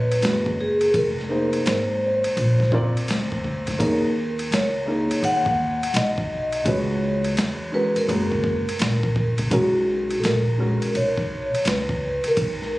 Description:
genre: hip hop, jazz-hop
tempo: 84 BPM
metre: 4/4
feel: swing 66% on 16ths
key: B major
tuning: A4 = 440 Hz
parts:
  - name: vibraphone with soft mallets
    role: melody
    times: 0.0-12.8 s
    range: F#4 to F#5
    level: -24 LUFS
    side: equal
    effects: analog delay
  - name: upright bass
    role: bass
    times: 0.0-12.8 s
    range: F1 to E2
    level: -26 LUFS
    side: equal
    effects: none
  - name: dusty soul sampler-style drum kit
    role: drums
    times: 0.1-12.7 s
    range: hi-hat, kick drum, ride cymbal, snare drum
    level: -27 LUFS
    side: equal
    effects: overdrive
  - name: dark upright piano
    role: accompaniment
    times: 0.2-10.9 s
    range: G#3 to D5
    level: -25 LUFS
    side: equal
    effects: none
room: light reverb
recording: recorded on a phone in the room, club reverb, compression, lossy compression artefacts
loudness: -20 LUFS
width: side -18 dB against mid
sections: 0.0-12.8 A section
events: none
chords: 0.0 G#m9; 0.9 Fm7; 2.4 A#; 3.8 D#m7; 6.7 C#m7; 8.1 F#; 9.5 B5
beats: 0.23 | 0.94 1.66 2.37 3.09 | 3.80 4.51 5.23 5.94 | 6.66 7.37 8.09 8.80 | 9.52 10.23 10.94 11.66 | 12.37

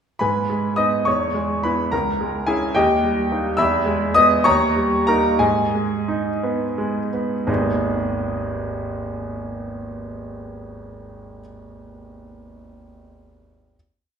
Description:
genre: classical, romantic character piece for solo piano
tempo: 56-73 BPM (dotted quarters)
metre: 6/8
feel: rubato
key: G# minor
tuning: A4 = 441 Hz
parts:
  - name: bright baby grand piano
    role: solo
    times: 0.2-13.8 s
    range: G#1 to E6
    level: -18 LUFS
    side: equal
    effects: none
room: wet recital hall reverb, RT60 1.7 s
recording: recorded in a church or concert hall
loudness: -18 LUFS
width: side -7 dB against mid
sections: 0.2-7.5 A section; 7.5-11.6 final chord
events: slowing down 2.8-7.5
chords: 0.2 G#m; 1.1 E; 1.9 C#m; 2.8 D#; 3.6 E; 4.5 D#7; 5.4 G#m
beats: | 0.22 1.06 | 1.92 2.76 | 3.60 4.46 | 5.40 6.43 | 7.48 8.51 | 9.54 10.56

